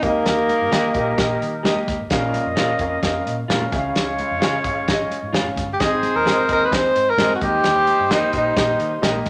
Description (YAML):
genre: uptempo 1960s-style soul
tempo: 130 BPM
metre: 4/4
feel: straight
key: unclear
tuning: A4 = 440 Hz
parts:
  - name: breathy tenor saxophone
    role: melody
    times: 0.0-1.4, 5.7-9.2 s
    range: Bb3 to C5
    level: -21 LUFS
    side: equal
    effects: none
  - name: warm concert grand piano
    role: accompaniment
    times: 0.0-9.3 s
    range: Ab2 to F5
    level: -27 LUFS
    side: equal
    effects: none
  - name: vintage muted fingered electric bass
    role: bass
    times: 0.0-9.3 s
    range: G1 to Eb3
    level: -34 LUFS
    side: equal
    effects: none
  - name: warm soul drum kit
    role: drums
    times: 0.0-9.3 s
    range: hi-hat, kick drum, snare drum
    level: -25 LUFS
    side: equal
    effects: none
  - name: congas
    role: percussion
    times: 0.0-9.3 s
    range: none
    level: -35 LUFS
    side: equal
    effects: none
  - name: warm horn section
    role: second line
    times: 0.1-9.2 s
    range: G3 to Eb5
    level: -27 LUFS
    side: equal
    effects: none
  - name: electric guitar through a small old amp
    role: stabs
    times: 0.7-9.2 s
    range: F4 to Eb5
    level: -32 LUFS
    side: equal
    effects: none
room: moderate large studio reverb, RT60 1.2 s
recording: none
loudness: -20 LUFS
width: mono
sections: 0.0-9.3 A section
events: none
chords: 0.0 Eb; 2.1 Bbm; 3.7 Db; 5.8 Ab; 7.4 Eb